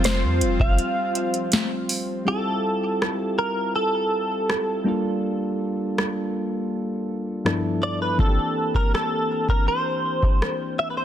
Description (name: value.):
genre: contemporary R&B.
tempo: 81 BPM.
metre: 4/4.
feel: straight.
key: F major.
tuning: A4 = 439 Hz.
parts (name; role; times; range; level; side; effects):
soft electric-piano-like synth keys; accompaniment; 0.0-11.0 s; G2 to C5; -26 LUFS; left 1 dB; chorus.
lush unison pad; sustained chords; 0.0-2.2 s; F3 to F4; -29 LUFS; left 1 dB; chorus.
warm 808-style bass; bass; 0.0-0.8 s; F1 to F2; -23 LUFS; equal; none.
booming analog drum machine; drums; 0.0-10.6 s; hi-hat, kick drum, rim click, snare drum; -22 LUFS; equal; overdrive.
direct-recorded clean electric guitar; melody; 0.1-11.0 s; A4 to F5; -24 LUFS; right 1 dB; analog chorus, digital delay.
room: light reverb.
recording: dense, heavily limited modern master, faint mains hum.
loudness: -21 LUFS.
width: side -10 dB against mid.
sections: 0.0-2.3 A section; 2.3-11.0 B section.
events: break 0.8-2.3.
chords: 0.0 F5; 2.3 Fmaj9; 4.9 Gm7; 7.4 G13; 8.2 C9.